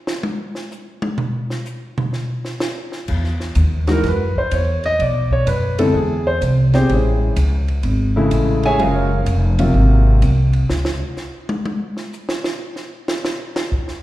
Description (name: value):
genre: jazz piano trio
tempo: 126 BPM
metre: 4/4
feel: swing 67% on 8ths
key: unclear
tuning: A4 = 438 Hz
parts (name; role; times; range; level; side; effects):
- compact cocktail drum kit; drums; 0.1-14.0 s; crash cymbal, hi-hat, kick drum, ride cymbal, snare drum, toms; -25 LUFS; equal; slapback echo
- upright bass; bass; 3.1-11.0 s; F1 to F#2; -16 LUFS; equal; none
- warm concert grand piano; melody; 3.9-10.2 s; C3 to G#5; -18 LUFS; equal; slapback echo
room: light reverb, studio ambience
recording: live gig heard through the venue's PA, recital hall reverb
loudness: -16 LUFS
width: side -15 dB against mid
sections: 0.0-3.1 A section; 3.1-14.0 A section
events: grand piano solo 0.0-14.0; drum solo 0.0-3.1, 10.7-14.0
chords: 0.0 N.C.; 3.1 Emaj7sus2; 5.0 Bm; 5.9 Eaug; 6.9 Amaj7; 8.8 Gbmaj9; 9.8 Ab13; 10.7 N.C.